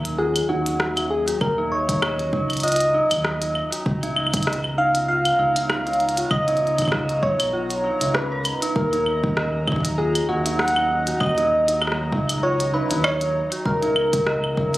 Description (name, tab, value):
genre	IDM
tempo	98 BPM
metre	4/4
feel	swing 56% on 16ths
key	Eb minor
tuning	A4 = 439 Hz
part	warm analog pad	sustained chords	0.0-14.8 s	Gb3 to Bb5	-31 LUFS	equal	chorus, vintage 12-bit sampler grit, sidechain pumping
part	dark detuned synth bell	arpeggios	0.0-14.7 s	Db4 to Eb5	-28 LUFS	right 1 dB	chorus, phaser, dub echo
part	round analog bass	bass	0.0-14.8 s	Cb2 to Eb2	-28 LUFS	equal	none
part	glitchy drum kit	drums	0.1-14.8 s	claves, hi-hat, rim click	-25 LUFS	equal	studio reverb
part	soft struck synth lead	melody	0.2-14.8 s	Gb4 to Gb5	-22 LUFS	equal	chorus, cassette tape, tape echo
part	electronic kick drum	drums	1.4-14.7 s	none	-25 LUFS	equal	studio reverb
room	moderate plate reverb, RT60 2.3 s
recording	recorded on a phone in the room, club reverb, compression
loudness	-19 LUFS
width	side -17 dB against mid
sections	0.0-14.8 A section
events	none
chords	0.0 Ebm7; 3.9 Db13; 8.8 Ebm7; 13.7 Db13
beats	0.19 0.80 | 1.41 2.02 2.63 3.25 | 3.86 4.47 5.08 5.70 | 6.31 6.92 7.53 8.14 | 8.76 9.37 9.98 10.59 | 11.21 11.82 12.43 13.04 | 13.66 14.27